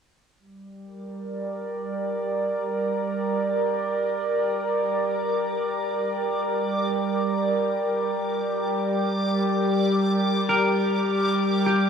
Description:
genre	ambient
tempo	free time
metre	none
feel	none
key	G minor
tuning	A4 = 440 Hz
part	warbly tape-like pad	sustained chords	0.8-11.9 s	G3 to F5	-23 LUFS	right 1 dB	chorus, built-in reverb, shimmer reverb
part	backwards swelling texture	texture	1.5-11.9 s	D6	-34 LUFS	left 1 dB	built-in reverb, shimmer reverb
part	semi-hollow electric guitar	arpeggios	10.5-11.9 s	G4 to Bb4	-25 LUFS	equal	diffuse ambient delay, shimmer reverb
room	wet huge ambient reverb, RT60 8.0 s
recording	dreamy mix soaked in reverb, cassette tape, studio ambience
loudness	-22 LUFS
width	side -7 dB against mid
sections	0.4-11.9 A section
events	fade-in on synth texture 0.4-11.9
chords	0.4 Gm; 9.7 Gm7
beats	free time

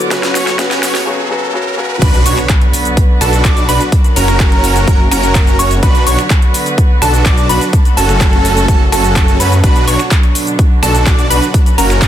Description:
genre	EDM, festival progressive house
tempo	126 BPM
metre	4/4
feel	straight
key	B minor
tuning	A4 = 439 Hz
part	felt-muted upright piano	accompaniment	0.0-2.0 s	C#3 to F#4	-19 LUFS	left 3 dB	vintage 12-bit sampler grit, sidechain pumping, ping-pong delay
part	warm studio string section	sustained chords	0.0-12.1 s	A#2 to C#6	-21 LUFS	right 2 dB	sidechain pumping
part	big-room dance drum kit	drums	0.0-12.1 s	crash cymbal, finger snaps, handclaps, hi-hat, shaker, snare drum	-19 LUFS	equal	overdrive, high-pass filter on snare, high-pass filter on hats, high-pass filter on perc, high-pass filter on cymbals
part	riser and impact	sound effects	0.0-3.9 s	none	-20 LUFS	equal	none
part	supersaw chords	riff	0.1-12.1 s	C#4 to D5	-17 LUFS	right 1 dB	cassette tape, sidechain pumping, ping-pong delay
part	detuned saw bass	bass	0.1-12.1 s	F#1 to F#2	-15 LUFS	equal	sidechain pumping
part	electronic kick drum	drums	0.1-12.1 s	none	-10 LUFS	equal	overdrive, high-pass filter on kick
part	plucky unison lead	arpeggios	2.0-12.1 s	A5 to D6	-18 LUFS	equal	sidechain pumping, ping-pong delay
room	little or no reverb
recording	dense, heavily limited modern master, high-pass filter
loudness	-9 LUFS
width	side -11 dB against mid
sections	0.0-2.0 A section; 2.0-12.1 B section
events	build-up 0.0-2.0; drum fill 0.0-1.1; riser 0.0-2.0; break 1.1-2.0; drop 2.0-12.1; impact 2.0-3.9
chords	0.1 F#m; 2.0 Bm; 3.9 F#; 5.8 Bm; 7.7 F#m; 9.6 Bm; 11.5 F#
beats	| 0.11 0.59 1.07 1.54 | 2.02 2.50 2.97 3.45 | 3.92 4.40 4.88 5.35 | 5.83 6.30 6.78 7.26 | 7.73 8.21 8.69 9.16 | 9.64 10.11 10.59 11.07 | 11.54 12.02

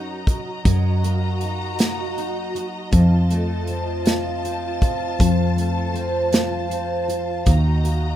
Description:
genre	six-eight pop ballad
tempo	53 BPM (dotted quarters)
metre	6/8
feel	straight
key	unclear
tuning	A4 = 439 Hz
part	picked steel-string acoustic guitar	accompaniment	0.0-8.2 s	F2 to Bb4	-24 LUFS	equal	double-tracked left and right
part	warm studio string section	sustained chords	0.0-8.2 s	F4 to Bb5	-29 LUFS	equal	none
part	vintage muted fingered electric bass	bass	0.0-8.2 s	Eb2 to Gb2	-21 LUFS	equal	none
part	natural country drum kit	drums	0.3-8.0 s	hi-hat, kick drum, snare drum	-20 LUFS	equal	none
room	little or no reverb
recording	rough home demo mix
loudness	-18 LUFS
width	side -12 dB against mid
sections	0.0-8.2 A section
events	none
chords	0.0 Gb6; 0.6 Ebm/Gb; 2.9 F7; 5.2 F; 7.5 Ebm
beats	| 0.65 1.78 | 2.92 4.06 | 5.20 6.33 | 7.47

